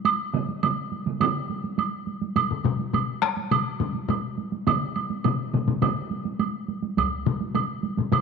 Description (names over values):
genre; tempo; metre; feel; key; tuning
japanese traditional, taiko drum ensemble; 104 BPM; 4/4; straight; none; none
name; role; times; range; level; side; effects
solo taiko drums; percussion; 0.0-8.2 s; none; -29 LUFS; right 6 dB; none
woodblock; percussion; 0.1-8.2 s; none; -28 LUFS; right 6 dB; none
taiko ensemble; percussion; 0.3-6.0 s; none; -30 LUFS; right 6 dB; none
taiko ensemble; percussion; 2.4-8.2 s; none; -26 LUFS; left 8 dB; none
solo taiko drums; percussion; 7.0-7.1 s; none; -32 LUFS; right 1 dB; none
room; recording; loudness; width
wet echo chamber reverb, RT60 1.9 s, small room ambience; 1960s-style stereo with parts hard left and right; -24 LUFS; side -5 dB against mid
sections
0.0-8.2 A section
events
none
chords
none